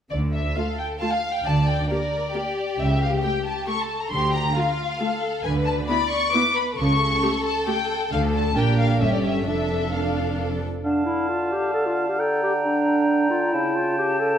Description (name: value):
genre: quick classical-period movement for symphony orchestra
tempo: 134 BPM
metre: 3/4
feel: straight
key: D minor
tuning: A4 = 439 Hz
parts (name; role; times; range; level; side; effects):
- dark studio violin section; melody; 0.1-10.4 s; D5 to D6; -26 LUFS; left 3 dB; none
- rich studio double bass section; bass; 0.1-10.6 s; F1 to D2; -28 LUFS; right 2 dB; none
- warm studio cello section; bass; 0.1-10.6 s; F2 to D3; -27 LUFS; right 2 dB; none
- rich studio violin section; second line; 0.6-10.6 s; F4 to F5; -28 LUFS; left 2 dB; none
- rich studio viola section; accompaniment; 0.6-10.6 s; A3 to Bb4; -28 LUFS; equal; none
- dark clarinet; second line; 10.8-14.4 s; D4 to A4; -22 LUFS; equal; none
- warm oboe; second line; 10.8-14.4 s; F5 to G5; -27 LUFS; right 1 dB; none
- warm bassoon; accompaniment; 10.8-14.4 s; C#3 to D3; -25 LUFS; right 1 dB; none
- hollow concert flute; second line; 10.9-14.4 s; A5 to Bb5; -29 LUFS; left 1 dB; none
room: wet recital hall reverb, RT60 1.5 s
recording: none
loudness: -20 LUFS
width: side -9 dB against mid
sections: 0.1-10.8 A section; 10.8-14.4 A section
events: none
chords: 0.1 Dm; 1.5 Gm/D; 2.8 A7/C#; 4.1 Dm; 5.4 N.C.; 6.8 A7/C#; 8.1 D5; 8.6 Gm/Bb; 9.0 A7/G; 9.5 Dm/F; 10.8 Dm; 13.5 A7/C#